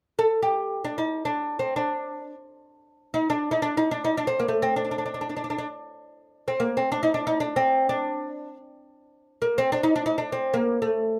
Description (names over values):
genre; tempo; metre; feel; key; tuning
Arabic maqam ensemble; free time; none; none; D maqam hijaz; A4 = 443 Hz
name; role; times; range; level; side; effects
oud; solo; 0.2-11.2 s; A3 to A4; -26 LUFS; equal; none
room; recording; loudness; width
light reverb; none; -26 LUFS; mono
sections
0.0-11.2 A section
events
none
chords
none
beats
free time